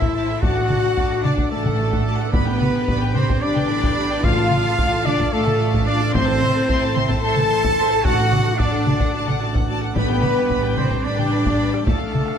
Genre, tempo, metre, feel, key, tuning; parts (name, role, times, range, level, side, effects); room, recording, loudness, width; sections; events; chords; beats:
cinematic, epic orchestral film score; 220 BPM (eighths); 7/8; straight; A4 = 440 Hz
warm symphonic violin section; melody; 0.0-12.4 s; E5 to C6; -29 LUFS; left 5 dB
mellow hollow silver concert flute; second line; 0.0-12.4 s; A4 to A5; -30 LUFS; right 1 dB
warm symphonic violin section; second line; 0.0-12.4 s; A4 to A5; -31 LUFS; left 3 dB
rich symphonic viola section; accompaniment; 0.0-12.4 s; E4 to F#5; -31 LUFS; right 1 dB
mellow French horn section; sustained chords; 0.0-12.4 s; A3 to A4; -25 LUFS; left 6 dB
pipe organ, plenum; sustained chords; 0.0-12.4 s; G3 to G5; -31 LUFS; right 1 dB
warm trumpet; stabs; 0.0-12.4 s; A4 to A5; -27 LUFS; right 4 dB
bright symphonic double bass section; bass; 0.0-12.3 s; A1; -24 LUFS; right 4 dB
rich symphonic cello section; bass; 0.0-12.4 s; A3 to A4; -27 LUFS; right 2 dB
taiko ensemble; drums; 0.0-12.4 s; -23 LUFS; equal
timpani; percussion; 2.3-8.8 s; A2; -30 LUFS; left 1 dB
moderate scoring stage reverb, RT60 1.5 s; -17 LUFS; side -8 dB against mid
0.0-12.4 A section
0.4 D/A; 2.3 G/A; 4.2 Dm/A; 6.1 Am; 8.1 D/A; 10.0 G/A; 11.9 Dm/A
0.15 | 0.42 0.69 0.96 1.24 1.51 1.78 2.06 | 2.33 2.60 2.87 3.15 3.42 3.69 3.96 | 4.24 4.51 4.78 5.05 5.33 5.60 5.87 | 6.14 6.42 6.69 6.96 7.23 7.51 7.78 | 8.05 8.32 8.60 8.87 9.14 9.41 9.69 | 9.96 10.23 10.50 10.77 11.05 11.32 11.59 | 11.86 12.13